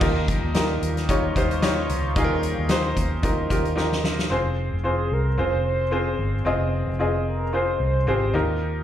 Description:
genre	piano-driven pop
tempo	112 BPM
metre	4/4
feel	swing 56% on 16ths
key	unclear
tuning	A4 = 441 Hz
part	bright upright piano	accompaniment	0.0-8.8 s	Eb3 to Eb5	-24 LUFS	left 1 dB	slapback echo
part	sweeping resonant pad	sustained chords	0.0-4.3 s	Eb3 to F4	-35 LUFS	right 1 dB	none
part	vintage muted fingered electric bass	bass	0.0-8.8 s	F1 to Eb2	-25 LUFS	equal	none
part	loose indie drum kit	drums	0.0-4.3 s	crash cymbal, hi-hat, kick drum, snare drum	-25 LUFS	equal	none
part	mellow horn-like synth lead	melody	4.9-8.5 s	G4 to C5	-27 LUFS	equal	chorus, slapback echo
room	light reverb, studio reverb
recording	live gig heard through the venue's PA, club reverb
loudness	-20 LUFS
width	side -10 dB against mid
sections	0.0-4.3 A section; 4.3-8.8 B section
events	drum fill 3.8-4.3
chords	0.0 Ebadd9; 4.3 Fm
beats	| 0.01 0.55 1.09 1.62 | 2.16 2.70 3.23 3.77 | 4.31 4.85 5.38 5.92 | 6.46 7.00 7.53 8.07 | 8.61

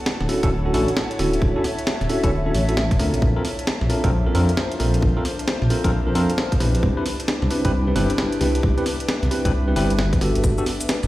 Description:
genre	UK garage, two-step garage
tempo	133 BPM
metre	4/4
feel	swing 63% on 16ths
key	unclear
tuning	A4 = 442 Hz
part	airy breathy pad	sustained chords	0.0-11.1 s	D4 to A5	-31 LUFS	left 1 dB	chorus, sidechain pumping
part	granular cloud pad	texture	0.0-11.1 s	B3 to A5	-31 LUFS	left 2 dB	built-in reverb, sidechain pumping
part	breakbeat sampler-style drum kit	drums	0.1-11.1 s	hi-hat, shaker, snare drum	-26 LUFS	equal	small room reverb
part	dark detuned saw bass	bass	0.2-11.1 s	D1 to F2	-21 LUFS	equal	none
part	tine electric piano	stabs	0.3-10.6 s	B3 to B4	-24 LUFS	equal	medium stereo tremolo, digital delay
part	electronic kick drum	drums	0.4-10.6 s	none	-20 LUFS	equal	small room reverb
room	light reverb, digital ambience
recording	played on a big sound system in a bare room, large studio reverb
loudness	-18 LUFS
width	side -16 dB against mid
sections	0.0-11.1 A section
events	none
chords	0.0 Dmaj9; 3.2 Bbmaj9; 6.8 Cmaj9; 10.4 Gmaj9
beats	0.06 0.51 0.96 | 1.42 1.87 2.32 2.77 | 3.22 3.67 4.12 4.57 | 5.03 5.48 5.93 6.38 | 6.83 7.28 7.73 8.18 | 8.63 9.09 9.54 9.99 | 10.44 10.89

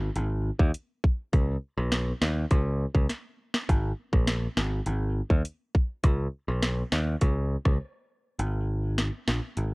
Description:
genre	dancehall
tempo	102 BPM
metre	4/4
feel	straight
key	unclear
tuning	A4 = 436 Hz
part	modern bright picked electric bass	bass	0.0-9.7 s	G#1 to D#2	-27 LUFS	equal	none
part	island pop drum kit	drums	0.2-9.7 s	hi-hat, kick drum, rim click, snare drum	-25 LUFS	equal	none
room	little or no reverb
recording	worn, warbling old tape, cassette tape, warbly pitch drift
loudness	-25 LUFS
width	side -31 dB against mid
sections	0.0-8.4 A section; 8.4-9.7 B section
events	break 7.8-8.4; kick muted 8.4-9.7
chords	none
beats	0.16 0.75 | 1.33 1.92 2.51 3.10 | 3.69 4.28 4.87 5.45 | 6.04 6.63 7.22 7.81 | 8.39 8.98 9.57

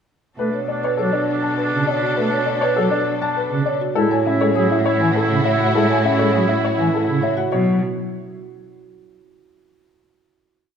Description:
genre	classical, minimalist pattern music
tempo	101 BPM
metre	3/4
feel	straight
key	B dorian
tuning	A4 = 441 Hz
part	clear baby grand piano	melody	0.4-7.8 s	G#4 to A5	-23 LUFS	left 9 dB	none
part	clear oboe	second line	0.4-7.3 s	D4 to E4	-26 LUFS	right 1 dB	none
part	pipe organ, flutes	accompaniment	0.4-7.8 s	C#3 to A3	-24 LUFS	left 1 dB	none
part	warm symphonic string section	sustained chords	0.4-7.3 s	D4 to A4	-27 LUFS	equal	none
part	warm cello	bass	0.4-7.8 s	A2 to B2	-25 LUFS	right 2 dB	none
part	marimba with soft mallets	arpeggios	0.5-7.8 s	C#4 to C#5	-22 LUFS	right 5 dB	none
room	moderate scoring stage reverb, RT60 2.0 s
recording	none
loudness	-16 LUFS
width	side -7 dB against mid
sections	0.4-7.5 A section; 7.5-9.3 final chord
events	none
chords	0.4 Bm7; 4.0 F#m7/A; 7.5 B5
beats	| 0.39 0.99 1.58 | 2.17 2.77 3.36 | 3.96 4.55 5.15 | 5.74 6.33 6.93 | 7.52

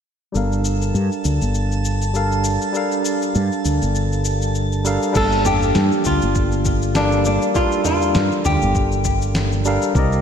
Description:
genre	sunset chillout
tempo	100 BPM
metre	4/4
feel	swing 56% on 16ths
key	G minor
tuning	A4 = 438 Hz
part	tine electric piano	accompaniment	0.3-10.2 s	G3 to F5	-22 LUFS	right 1 dB	auto-pan, low-pass filter, tape echo
part	mellow fretless electric bass	bass	0.4-10.2 s	G1 to G2	-20 LUFS	equal	lush chorus
part	dusty soul sampler-style drum kit	drums	0.4-10.2 s	crash cymbal, shaker, snare drum, toms	-27 LUFS	left 1 dB	none
part	drifting glass-harmonics texture	texture	0.7-5.2 s	A5	-30 LUFS	right 2 dB	chorus, built-in reverb
part	flamenco guitar	melody	5.2-9.6 s	D4 to A4	-21 LUFS	left 1 dB	tape echo
part	electronic kick drum	drums	5.2-10.1 s	none	-22 LUFS	equal	none
room	moderate lush hall reverb, RT60 2.6 s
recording	dreamy mix soaked in reverb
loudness	-16 LUFS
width	side -8 dB against mid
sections	0.4-5.2 A section; 5.2-10.2 B section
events	filter sweep on fretless electric bass 0.4-5.2; filter sweep on tine electric piano 0.4-5.2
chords	0.4 Gm9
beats	| 0.35 0.95 1.55 2.15 | 2.75 3.35 3.95 4.55 | 5.15 5.75 6.35 6.95 | 7.55 8.15 8.75 9.35 | 9.95

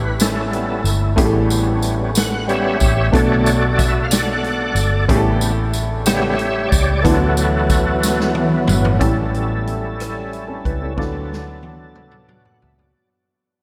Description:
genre	slow gospel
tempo	61 BPM (dotted quarters)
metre	6/8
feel	straight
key	D major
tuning	A4 = 440 Hz
part	warm upright piano	accompaniment	0.0-13.0 s	A2 to B4	-26 LUFS	equal	subtle chorus
part	overdriven tonewheel organ	sustained chords	0.0-13.1 s	C#3 to F#5	-23 LUFS	equal	slow rotary speaker, chorus vibrato
part	vintage muted fingered electric bass	bass	0.0-12.9 s	G1 to D2	-23 LUFS	equal	none
part	swinging big-band drum kit	drums	0.2-12.9 s	hi-hat, kick drum, rim click, snare drum, toms	-24 LUFS	equal	none
part	tambourine	percussion	0.2-9.0 s	none	-29 LUFS	equal	none
room	wet huge ambient reverb, RT60 4.9 s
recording	dreamy mix soaked in reverb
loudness	-17 LUFS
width	mono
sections	0.0-9.0 A section; 9.0-12.9 B section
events	tonewheel organ solo 0.0-9.0; drum fill 8.0-9.0, 11.0-12.9; fade-out 9.0-12.9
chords	0.0 A7; 3.1 Bm7; 5.1 A7; 7.0 D6; 9.0 A7; 11.0 D6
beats	0.20 | 1.18 2.15 | 3.13 4.11 | 5.09 6.07 | 7.05 8.03 | 9.01 9.99 | 10.98 11.96

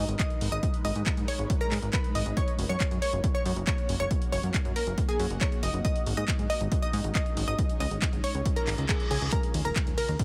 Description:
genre	uplifting trance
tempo	138 BPM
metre	4/4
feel	straight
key	unclear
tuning	A4 = 441 Hz
part	unison pluck	melody	0.0-10.2 s	Ab4 to Eb5	-36 LUFS	equal	sidechain pumping, tape echo
part	analog pluck	second line	0.0-10.2 s	Ab5 to Eb6	-43 LUFS	equal	lush chorus, sidechain pumping
part	shimmering ambient pad	sustained chords	0.0-10.2 s	Db3 to Cb5	-42 LUFS	equal	chorus, built-in reverb, phaser, vintage 12-bit sampler grit, sidechain pumping
part	plucky analog bass	bass	0.0-10.2 s	Eb1 to Ab2	-33 LUFS	equal	sidechain pumping
part	punchy analog drum machine	drums	0.1-10.2 s	handclaps, hi-hat, ride cymbal	-38 LUFS	equal	sidechain pumping on hats, sidechain pumping on cymbals
part	electronic kick drum	drums	0.2-10.2 s	none	-31 LUFS	equal	none
part	reverse cymbal	sound effects	8.6-9.3 s	none	-39 LUFS	equal	none
room	light reverb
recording	heavily compressed radio sound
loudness	-28 LUFS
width	mono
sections	0.0-10.2 A section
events	reverse cymbal 8.6-9.3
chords	0.0 Abmadd9; 2.4 Gb; 4.1 Ebm/Gb; 5.8 Absus4; 7.6 Db; 9.3 Ebm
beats	0.20 | 0.63 1.06 1.50 1.93 | 2.37 2.80 3.24 3.67 | 4.11 4.54 4.98 5.41 | 5.85 6.28 6.72 7.15 | 7.59 8.02 8.46 8.89 | 9.32 9.76 10.20

